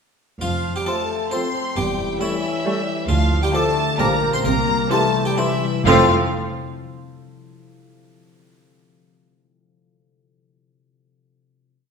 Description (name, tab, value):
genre	cinematic, playful, whimsical film cue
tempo	123-136 BPM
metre	3/4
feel	straight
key	F major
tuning	A4 = 440 Hz
part	harpsichord	melody	0.4-6.1 s	E4 to C5	-27 LUFS	right 1 dB	none
part	rich studio violin section	melody	0.4-6.1 s	E5 to C6	-26 LUFS	left 1 dB	none
part	warm French horn section	sustained chords	0.4-6.1 s	E3 to F4	-26 LUFS	left 3 dB	none
part	concert harp	arpeggios	0.4-6.1 s	Bb2 to F5	-27 LUFS	left 5 dB	none
part	rich studio double bass section	bass	0.4-6.1 s	E1 to D2	-25 LUFS	right 3 dB	none
part	rich symphonic cello section	bass	0.4-6.1 s	D2 to C3	-27 LUFS	right 2 dB	none
part	triangle	percussion	0.4-1.3 s	none	-45 LUFS	left 2 dB	none
part	mellow hollow silver concert flute	second line	0.9-6.1 s	C6 to D6	-27 LUFS	left 5 dB	none
part	rich studio violin section	second line	0.9-6.1 s	C4 to G4	-28 LUFS	left 4 dB	none
part	warm clarinet	second line	0.9-6.1 s	G4 to A4	-28 LUFS	right 1 dB	none
part	mellow bassoon	accompaniment	0.9-6.1 s	E3 to G3	-29 LUFS	right 4 dB	none
part	rich studio viola section	accompaniment	0.9-6.1 s	E3 to A3	-26 LUFS	right 4 dB	none
room	wet scoring stage reverb, RT60 1.6 s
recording	minimal, uncompressed stereo recording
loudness	-17 LUFS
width	side -6 dB against mid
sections	0.4-5.9 A section; 5.9-7.3 final chord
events	none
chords	0.4 F; 1.8 A7/E; 3.1 Dm; 4.0 Gm7/Bb; 4.5 C7; 5.9 F